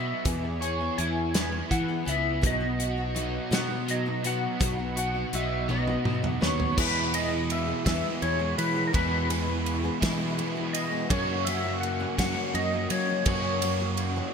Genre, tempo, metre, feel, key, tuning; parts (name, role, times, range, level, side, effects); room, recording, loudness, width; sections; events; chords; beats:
folk rock and heartland rock; 55 BPM (dotted quarters); 6/8; straight; E lydian from 6.8 s; A4 = 441 Hz
clean lap steel guitar; melody; 0.0-14.3 s; A#4 to G#5; -31 LUFS; left 1 dB; analog chorus, digital delay
picked steel-string acoustic guitar; accompaniment; 0.0-14.3 s; E2 to G#4; -34 LUFS; left 4 dB; analog chorus
overdriven electric guitar; riff; 0.0-14.3 s; E2 to G#4; -32 LUFS; right 2 dB; ensemble chorus
fingered electric bass; bass; 0.0-14.2 s; B1 to F#3; -31 LUFS; equal
natural country drum kit; drums; 0.3-14.1 s; crash cymbal, hi-hat, kick drum, ride cymbal, snare drum, toms; -30 LUFS; equal; gated reverb
mellow tonewheel organ; sustained chords; 2.4-14.3 s; B3 to D#6; -41 LUFS; right 2 dB
light reverb, small room ambience; bright 1980s-style digital production; -25 LUFS; side -6 dB against mid
0.0-6.8 A section; 6.8-14.3 B section
drum fill 5.7-6.8
0.3 E; 2.4 B; 6.8 E; 11.1 F#
| 0.26 1.35 | 2.43 3.52 | 4.61 5.69 | 6.78 7.86 | 8.94 10.02 | 11.10 12.18 | 13.26